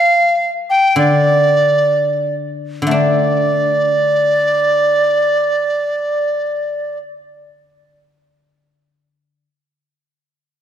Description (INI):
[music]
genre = chinese traditional, Chinese chamber ensemble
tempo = 54-76 BPM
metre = 2/4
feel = rubato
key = D yu mode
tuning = A4 = 440 Hz
[part]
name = bright reedy large dizi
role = melody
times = 0.0-7.0 s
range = D5 to G5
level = -13 LUFS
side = right 1 dB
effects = none
[part]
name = guzheng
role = accompaniment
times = 0.0-9.4 s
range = D3 to D4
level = -18 LUFS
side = left 3 dB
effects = none
[sound]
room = wet scoring stage reverb, RT60 2.0 s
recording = dark, warm production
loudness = -13 LUFS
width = side -9 dB against mid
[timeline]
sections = 0.0-2.9 A section; 2.9-7.3 B section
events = slowing down 0.0-2.9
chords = none